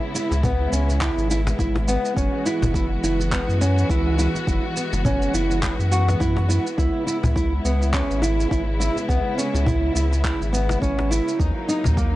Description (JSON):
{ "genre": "organic downtempo", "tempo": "104 BPM", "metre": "4/4", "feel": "swing 58% on 16ths", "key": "C# minor", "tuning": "A4 = 440 Hz", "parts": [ { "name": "warm symphonic string section", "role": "sustained chords", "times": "0.0-12.2 s", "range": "C#3 to F#4", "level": "-28 LUFS", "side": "left 1 dB", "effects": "sidechain pumping" }, { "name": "nylon-string guitar", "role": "arpeggios", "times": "0.1-12.2 s", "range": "A#3 to F#4", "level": "-24 LUFS", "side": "right 1 dB", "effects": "tape echo" }, { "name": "electronic shaker and handclaps", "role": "drums", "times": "0.2-12.1 s", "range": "none", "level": "-31 LUFS", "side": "right 1 dB", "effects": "none" }, { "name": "warm sub bass", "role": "bass", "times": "0.3-12.2 s", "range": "F#1 to F#2", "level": "-22 LUFS", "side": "equal", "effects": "sidechain pumping" }, { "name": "cajon", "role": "percussion", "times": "0.3-12.0 s", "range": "none", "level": "-26 LUFS", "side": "left 1 dB", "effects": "none" }, { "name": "electronic kick drum", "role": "drums", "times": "0.4-12.1 s", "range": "none", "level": "-25 LUFS", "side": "equal", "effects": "overdrive" } ], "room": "little or no reverb", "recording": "dry, gritty hardware recording, nothing above 10.7 kHz", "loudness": "-19 LUFS", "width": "side -16 dB against mid", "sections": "0.0-12.2 A section", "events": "none", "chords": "0.0 C#m7; 2.2 F#9sus4; 6.8 C#m7; 11.4 D#m7", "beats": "0.44 1.01 1.59 | 2.17 2.74 3.32 3.90 | 4.47 5.05 5.63 6.21 | 6.78 7.36 7.94 8.51 | 9.09 9.67 10.24 10.82 | 11.40 11.97" }